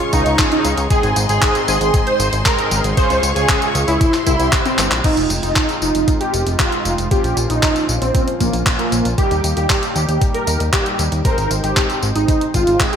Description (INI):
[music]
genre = italo disco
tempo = 116 BPM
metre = 4/4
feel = straight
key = F minor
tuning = A4 = 440 Hz
[part]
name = warm studio string section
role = sustained chords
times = 0.0-5.0 s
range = G4 to Db6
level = -25 LUFS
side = left 1 dB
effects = none
[part]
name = analog synth brass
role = stabs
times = 0.0-13.0 s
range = Ab2 to C5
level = -24 LUFS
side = right 2 dB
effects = chorus
[part]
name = clean 12-bit digital drum machine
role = drums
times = 0.0-13.0 s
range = crash cymbal, handclaps, hi-hat, tambourine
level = -21 LUFS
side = equal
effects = gated reverb
[part]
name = wide unison lead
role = melody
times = 0.1-13.0 s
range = Bb3 to C5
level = -19 LUFS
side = right 1 dB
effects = ensemble chorus, ping-pong delay
[part]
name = fat analog bass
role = bass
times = 0.1-12.8 s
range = F1 to Eb2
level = -20 LUFS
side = equal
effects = none
[part]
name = electronic kick drum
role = drums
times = 0.1-12.9 s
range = none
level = -19 LUFS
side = equal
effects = none
[sound]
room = moderate plate reverb, RT60 2.0 s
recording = bright 1980s-style digital production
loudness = -14 LUFS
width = side -8 dB against mid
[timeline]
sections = 0.0-5.0 A section; 5.0-13.0 B section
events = drum fill 4.8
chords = 0.0 Db; 0.9 Ab; 3.0 Db; 4.0 C; 5.0 Fm7; 7.1 Bbm; 9.2 Eb; 11.2 Ab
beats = 0.39 | 0.91 1.42 1.94 2.46 | 2.97 3.49 4.01 4.53 | 5.04 5.56 6.08 6.59 | 7.11 7.63 8.15 8.66 | 9.18 9.70 10.21 10.73 | 11.25 11.77 12.28 12.80